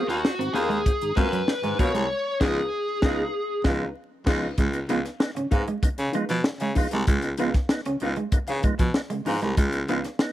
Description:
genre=funk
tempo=96 BPM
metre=4/4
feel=straight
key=unclear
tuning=A4 = 438 Hz
part: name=lead guitar through a small cranked amp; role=melody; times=0.0-3.6 s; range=Gb4 to Db5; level=-26 LUFS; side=left 1 dB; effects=overdrive
part: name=clean electric guitar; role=accompaniment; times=0.0-10.2 s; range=C4 to F5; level=-32 LUFS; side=left 3 dB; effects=none
part: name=percussive tonewheel organ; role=stabs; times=0.0-10.3 s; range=Ab2 to F4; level=-33 LUFS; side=right 2 dB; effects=chorus vibrato, fast rotary speaker
part: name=electric guitar at the edge of break-up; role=riff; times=0.1-10.1 s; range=F3 to Db4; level=-30 LUFS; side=right 4 dB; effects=none
part: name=raspy baritone saxophone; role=bass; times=0.1-10.0 s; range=C2 to Db3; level=-27 LUFS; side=equal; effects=none
part: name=tight funk drum kit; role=drums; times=0.1-10.3 s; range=crash cymbal, hi-hat, kick drum, snare drum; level=-24 LUFS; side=equal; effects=none
room=small room ambience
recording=dry, close 1970s-style studio recording, vinyl crackle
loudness=-22 LUFS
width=side -13 dB against mid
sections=0.0-4.6 A section; 4.6-10.3 B section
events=band accent 2.1-4.6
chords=0.0 Ab13; 2.1 Db9

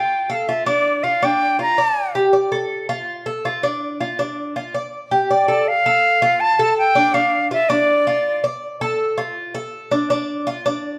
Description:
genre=latin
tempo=162 BPM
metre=4/4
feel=straight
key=D minor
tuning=A4 = 439 Hz
part: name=silver concert flute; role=melody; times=0.0-2.1, 5.3-8.4 s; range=D5 to Bb5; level=-18 LUFS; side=equal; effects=none
part: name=Cuban tres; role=arpeggios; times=0.0-11.0 s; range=D4 to D5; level=-23 LUFS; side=equal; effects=none
room=moderate large studio reverb, RT60 1.1 s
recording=dark, warm production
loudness=-19 LUFS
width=mono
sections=0.0-5.7 A section; 5.7-11.0 B section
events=none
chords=0.0 Dm; 1.2 Gm7; 2.7 Dm; 4.2 N.C.; 5.7 Dm

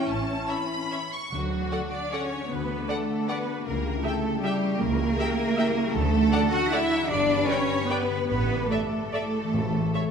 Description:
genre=classical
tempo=138-168 BPM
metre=3/4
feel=rubato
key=D major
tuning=A4 = 440 Hz
part: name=rich studio violin section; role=melody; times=0.0-10.0 s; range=E5 to C#6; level=-36 LUFS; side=left 2 dB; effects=none
part: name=dark studio viola section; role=accompaniment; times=0.0-10.0 s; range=C#4 to E5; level=-34 LUFS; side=right 2 dB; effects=none
part: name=warm French horn section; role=sustained chords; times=0.0-1.1 s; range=E3 to E4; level=-34 LUFS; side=left 7 dB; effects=none
part: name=concert harp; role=arpeggios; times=0.0-10.1 s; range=G2 to D6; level=-31 LUFS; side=left 7 dB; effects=none
part: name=rich studio double bass section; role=bass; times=0.1-9.9 s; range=G1 to D2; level=-32 LUFS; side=right 3 dB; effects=none
part: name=warm studio cello section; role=bass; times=0.1-10.1 s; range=A2 to F#4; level=-27 LUFS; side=right 3 dB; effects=none
part: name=clear symphonic violin section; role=second line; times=0.5-10.1 s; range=F#4 to F#5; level=-31 LUFS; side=equal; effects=none
part: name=timpani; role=percussion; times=1.3-1.9, 6.0-6.5, 9.5-10.1 s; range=A2 to D3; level=-35 LUFS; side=left 1 dB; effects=none
room=moderate concert hall reverb, RT60 2.0 s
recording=minimal, uncompressed stereo recording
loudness=-23 LUFS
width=side -6 dB against mid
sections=0.0-1.3 A section; 1.3-10.1 B section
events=none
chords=0.0 A; 1.3 D; 3.7 C#dim7; 6.0 D; 7.1 G; 8.3 Asus4; 9.5 A

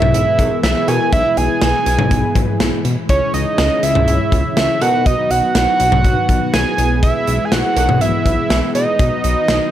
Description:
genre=synth-pop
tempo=122 BPM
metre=4/4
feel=straight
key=E major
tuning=A4 = 440 Hz
part: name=fat analog lead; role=melody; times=0.0-9.7 s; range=C#5 to G#5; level=-17 LUFS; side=right 3 dB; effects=none
part: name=mellow synth brass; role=accompaniment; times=0.0-9.7 s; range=B3 to C#5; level=-23 LUFS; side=left 2 dB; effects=chorus
part: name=string machine, cellos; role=sustained chords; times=0.0-9.7 s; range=B2 to G#4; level=-25 LUFS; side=left 1 dB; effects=ensemble chorus
part: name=chorused synth bass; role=bass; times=0.0-9.6 s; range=B1 to B2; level=-19 LUFS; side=equal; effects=none
part: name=modern studio drum kit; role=drums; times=0.0-9.6 s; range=cowbell, hi-hat, kick drum, snare drum, toms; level=-18 LUFS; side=left 1 dB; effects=none
room=light reverb, small room ambience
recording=none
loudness=-13 LUFS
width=side -11 dB against mid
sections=0.0-9.7 A section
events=none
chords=0.0 E/B; 3.1 C#m; 4.8 B; 6.8 E/B; 9.0 B

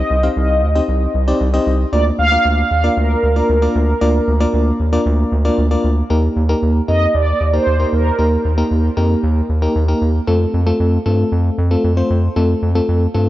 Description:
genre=synth-pop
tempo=115 BPM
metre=4/4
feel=straight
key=unclear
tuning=A4 = 441 Hz
part: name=mellow synth brass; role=melody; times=0.0-8.4 s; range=Bb4 to F5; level=-19 LUFS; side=right 1 dB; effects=chorus, dub echo
part: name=FM electric piano with tremolo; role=accompaniment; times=0.0-13.3 s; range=A3 to F5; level=-18 LUFS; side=left 1 dB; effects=none
part: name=round analog bass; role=bass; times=0.0-13.3 s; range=C2 to G2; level=-16 LUFS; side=equal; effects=none
room=moderate plate reverb, RT60 3.3 s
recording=echo-heavy mix, nothing above 8.0 kHz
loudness=-13 LUFS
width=side -15 dB against mid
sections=0.0-6.1 A section; 6.1-13.3 B section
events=none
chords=0.0 Cm; 1.9 Bb/D; 6.1 Eb; 10.3 F

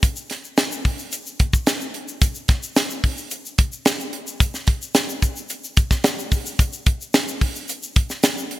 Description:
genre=pop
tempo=110 BPM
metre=4/4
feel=straight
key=none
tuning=none
part: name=tight funk drum kit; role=drums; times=0.0-8.6 s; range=hi-hat, kick drum, snare drum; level=-18 LUFS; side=equal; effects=none
part: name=tube shaker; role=percussion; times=0.0-8.5 s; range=none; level=-32 LUFS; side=left 4 dB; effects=none
room=light reverb, small room ambience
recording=bright 1980s-style digital production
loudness=-19 LUFS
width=side -16 dB against mid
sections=0.0-8.6 A section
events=none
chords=none

